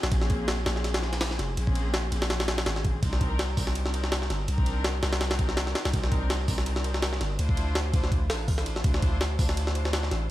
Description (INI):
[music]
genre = drum and bass, jungle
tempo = 165 BPM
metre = 4/4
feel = swing 55% on 16ths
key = unclear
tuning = A4 = 440 Hz
[part]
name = clear symphonic string section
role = sustained chords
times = 0.0-10.3 s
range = Bb3 to C5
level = -36 LUFS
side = left 1 dB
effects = none
[part]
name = long sustained 808-style bass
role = bass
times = 0.0-10.3 s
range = F1 to D2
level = -28 LUFS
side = equal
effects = tube saturation
[part]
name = jungle sampler-style drum kit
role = drums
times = 0.0-10.2 s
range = hi-hat, kick drum, ride cymbal, snare drum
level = -27 LUFS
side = equal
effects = none
[sound]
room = digital ambience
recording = vinyl crackle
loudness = -24 LUFS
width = side -15 dB against mid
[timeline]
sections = 0.0-10.3 A section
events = none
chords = 0.0 Bbm9; 3.0 Cm9; 7.4 Dm9